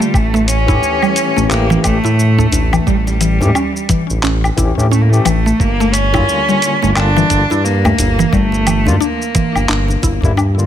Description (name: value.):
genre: organic downtempo.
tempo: 88 BPM.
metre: 4/4.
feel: swing 60% on 16ths.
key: A phrygian dominant.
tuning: A4 = 440 Hz.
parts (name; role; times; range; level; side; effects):
rich cello; melody; 0.0-10.4 s; G3 to D4; -17 LUFS; right 1 dB; ping-pong delay.
overdriven tine electric piano; accompaniment; 0.0-10.7 s; D3 to G4; -22 LUFS; left 4 dB; fast tremolo, sidechain pumping, ping-pong delay.
mallet-like synth pluck; arpeggios; 0.0-10.6 s; E3 to E4; -18 LUFS; equal; chorus, ping-pong delay.
dusty soul sampler-style drum kit; drums; 0.0-10.7 s; handclaps, hi-hat, shaker, woodblock; -21 LUFS; left 1 dB; none.
smooth synth bass; bass; 0.1-10.7 s; G1 to A2; -15 LUFS; equal; none.
electronic kick drum; drums; 0.1-10.3 s; none; -17 LUFS; equal; none.
djembe; percussion; 0.3-10.3 s; none; -24 LUFS; left 1 dB; none.
room: light reverb, digital ambience.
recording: none.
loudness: -11 LUFS.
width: side -10 dB against mid.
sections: 0.0-10.7 A section.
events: none.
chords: 0.1 A7; 5.6 Gm7.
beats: | 0.14 0.82 1.51 2.19 | 2.87 3.55 4.23 4.92 | 5.60 6.28 6.96 7.64 | 8.32 9.01 9.69 10.37.